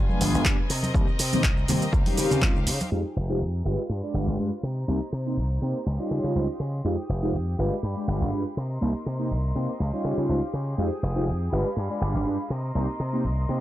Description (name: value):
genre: filtered disco house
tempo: 122 BPM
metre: 4/4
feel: swing 54% on 16ths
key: F minor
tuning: A4 = 440 Hz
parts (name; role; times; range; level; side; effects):
- clear chamber violin section; sustained chords; 0.0-13.6 s; Ab3 to Eb6; -37 LUFS; left 1 dB; sidechain pumping, low-pass filter
- slap bass with an envelope filter; bass; 0.0-13.6 s; F1 to Db3; -26 LUFS; equal; tube saturation, sidechain pumping, low-pass filter
- mellow synth brass; accompaniment; 0.1-13.6 s; Eb3 to D5; -28 LUFS; equal; chorus, phaser, sidechain pumping, low-pass filter
- congas and egg shaker; percussion; 0.1-2.9 s; none; -33 LUFS; right 2 dB; sidechain pumping on perc, low-pass filter on perc
- punchy analog drum machine; drums; 0.2-2.9 s; handclaps, hi-hat, shaker; -28 LUFS; right 1 dB; sidechain pumping on perc, sidechain pumping on hats
- electronic kick drum; drums; 0.5-2.5 s; none; -24 LUFS; equal; none
room: little or no reverb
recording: dry, gritty hardware recording, transformer saturation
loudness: -23 LUFS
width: side -14 dB against mid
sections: 0.0-2.9 A section; 2.9-13.6 B section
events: none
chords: 0.0 G7b9; 0.7 Cm7; 1.9 Dbmaj9#11; 2.9 Fm9; 3.7 G7b9; 4.6 Cm7; 5.9 Dbmaj9#11; 6.8 Fm9; 7.6 G7b9; 8.6 Cm7; 9.8 Dbmaj9#11; 10.8 Fm9; 11.5 G7b9; 12.5 Cm7